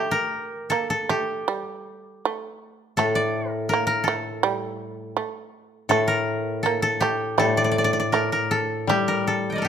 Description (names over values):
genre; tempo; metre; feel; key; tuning
japanese traditional; 75-84 BPM; 4/4; rubato; unclear; A4 = 440 Hz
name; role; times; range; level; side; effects
koto; melody; 0.0-9.7 s; G4 to G5; -24 LUFS; left 1 dB; none
shamisen; second line; 0.0-9.7 s; G3 to Bb3; -26 LUFS; right 7 dB; none
koto; accompaniment; 3.0-9.7 s; A2 to G3; -26 LUFS; left 3 dB; none
room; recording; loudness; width
moderate recital hall reverb, RT60 1.4 s; close, detailed microphones; -21 LUFS; side -8 dB against mid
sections
0.0-9.7 A section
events
none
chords
none